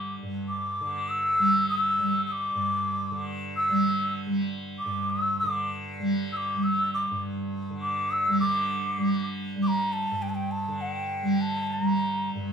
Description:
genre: indian classical, Hindustani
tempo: 99 BPM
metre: 5/4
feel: straight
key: G raga shivaranjani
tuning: A4 = 440 Hz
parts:
  - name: breathy hollow bansuri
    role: melody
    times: 0.0-12.3 s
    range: G5 to E6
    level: -26 LUFS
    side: equal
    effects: none
  - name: tanpura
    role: drone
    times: 0.0-12.5 s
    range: G2 to G3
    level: -29 LUFS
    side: right 1 dB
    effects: none
room: wet studio reverb, RT60 0.8 s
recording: band playing live in one room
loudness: -25 LUFS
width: side -7 dB against mid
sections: 0.0-8.4 A section; 8.4-12.5 B section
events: speeding up 0.0-12.5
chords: none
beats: 0.49 1.10 1.72 | 2.34 2.95 3.56 4.17 4.78 | 5.39 6.00 6.61 7.21 7.82 | 8.42 9.02 9.62 10.22 10.81 | 11.41 12.00

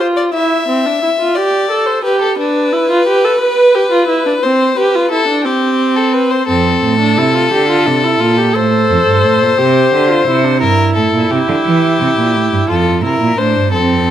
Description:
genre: classical, baroque-style fugue for string quartet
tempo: 58 BPM (dotted quarters)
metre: 12/8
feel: straight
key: F major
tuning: A4 = 440 Hz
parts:
  - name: rich violin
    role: second line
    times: 0.0-14.1 s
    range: G4 to E5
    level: -14 LUFS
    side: left 4 dB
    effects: none
  - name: warm viola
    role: accompaniment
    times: 0.0-14.1 s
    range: C4 to B4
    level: -14 LUFS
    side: right 2 dB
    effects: none
  - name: clear cello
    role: bass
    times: 6.5-14.1 s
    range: F2 to E3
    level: -14 LUFS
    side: right 4 dB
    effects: none
room: moderate recital hall reverb, RT60 1.5 s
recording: close, detailed microphones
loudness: -10 LUFS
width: side -10 dB against mid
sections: 0.0-14.1 A section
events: none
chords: 0.0 C (rootless); 2.4 Bdim/D; 4.4 C5; 6.5 F; 10.6 Edim/G; 12.7 F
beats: 0.34 1.36 | 2.39 3.41 4.43 5.45 | 6.48 7.52 8.55 9.58 | 10.61 11.65 12.69 13.73

